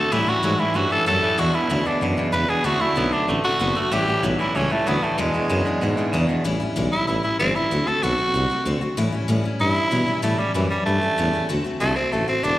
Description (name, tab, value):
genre	rockabilly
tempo	190 BPM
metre	4/4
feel	straight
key	A mixolydian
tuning	A4 = 440 Hz
part	raspy tenor saxophone	melody	0.0-12.6 s	E3 to B4	-22 LUFS	right 1 dB	none
part	picked steel-string acoustic guitar	accompaniment	0.0-12.6 s	E2 to F#4	-26 LUFS	left 3 dB	slapback echo
part	twangy electric guitar	riff	0.0-6.4 s	E2 to B3	-25 LUFS	right 3 dB	slapback echo
part	warm tuba	bass	0.0-12.6 s	E1 to B2	-25 LUFS	equal	none
room	little or no reverb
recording	live gig heard through the venue's PA, recital hall reverb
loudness	-19 LUFS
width	side -15 dB against mid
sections	0.0-6.4 A section; 6.4-12.6 B section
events	tenor saxophone solo 6.4-12.6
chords	0.1 A7; 1.4 E7; 2.6 D7; 3.9 A7; 5.2 E7; 6.4 A7; 7.7 D7; 9.0 A7; 11.5 D7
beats	| 0.12 0.43 0.75 1.07 | 1.38 1.70 2.02 2.33 | 2.65 2.97 3.28 3.60 | 3.92 4.23 4.55 4.86 | 5.18 5.50 5.81 6.13 | 6.45 6.76 7.08 7.39 | 7.71 8.03 8.34 8.66 | 8.97 9.29 9.60 9.92 | 10.23 10.55 10.86 11.18 | 11.49 11.81 12.12 12.44